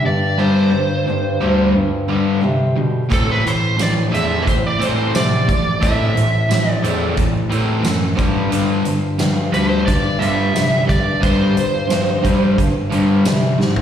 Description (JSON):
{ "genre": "classic rock", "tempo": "89 BPM", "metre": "4/4", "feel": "straight", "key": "unclear", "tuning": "A4 = 439 Hz", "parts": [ { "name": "lead guitar through a small cranked amp", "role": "melody", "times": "0.0-12.5 s", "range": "A4 to E5", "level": "-20 LUFS", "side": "right 1 dB", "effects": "overdrive, slapback echo, tape echo" }, { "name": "picked steel-string acoustic guitar", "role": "accompaniment", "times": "0.0-13.8 s", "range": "A2 to C5", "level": "-30 LUFS", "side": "left 2 dB", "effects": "slapback echo" }, { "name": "crunchy overdriven guitar", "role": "riff", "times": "0.0-13.8 s", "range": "G2 to C4", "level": "-21 LUFS", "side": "right 6 dB", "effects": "slapback echo" }, { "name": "overdriven semi-hollow guitar", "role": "riff", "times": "0.0-13.8 s", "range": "G2 to A3", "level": "-21 LUFS", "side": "left 6 dB", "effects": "spring reverb, slapback echo" }, { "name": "mellow bass clarinet", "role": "bass", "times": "0.1-13.8 s", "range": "D2 to C3", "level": "-21 LUFS", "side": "equal", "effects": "none" }, { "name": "huge arena drum kit", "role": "drums", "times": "3.1-13.8 s", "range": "hi-hat, kick drum, snare drum, tambourine, toms", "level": "-21 LUFS", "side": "equal", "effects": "none" } ], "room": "light reverb", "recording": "live gig heard through the venue's PA, recital hall reverb", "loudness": "-14 LUFS", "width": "side -9 dB against mid", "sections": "0.0-13.8 A section", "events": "drum fill 13.6", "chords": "0.0 Gsus4; 3.1 Am; 8.2 Gsus4", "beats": "| 0.39 1.07 1.75 2.43 | 3.11 3.78 4.46 5.14 | 5.81 6.49 7.17 7.84 | 8.52 9.20 9.87 10.55 | 11.22 11.90 12.58 13.25" }